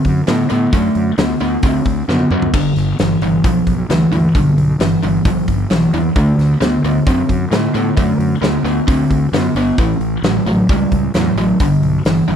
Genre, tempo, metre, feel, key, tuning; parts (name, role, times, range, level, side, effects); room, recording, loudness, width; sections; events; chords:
blues rock power trio and southern rock; 132 BPM; 4/4; straight; D mixolydian; A4 = 436 Hz
distorted electric guitar; riff; 0.0-12.4 s; G2 to C4; -14 LUFS; equal; distortion
big rock drum kit; drums; 0.0-12.4 s; crash cymbal, hi-hat, kick drum, snare drum, toms; -19 LUFS; equal
fuzz fingered electric bass; bass; 0.1-12.4 s; G1 to A2; -20 LUFS; equal; overdrive
light reverb; dry, close 1970s-style studio recording; -12 LUFS; side -8 dB against mid
0.0-12.4 A section
drum fill 2.1-2.5
0.0 D; 2.5 G; 6.2 D; 9.8 A; 11.6 G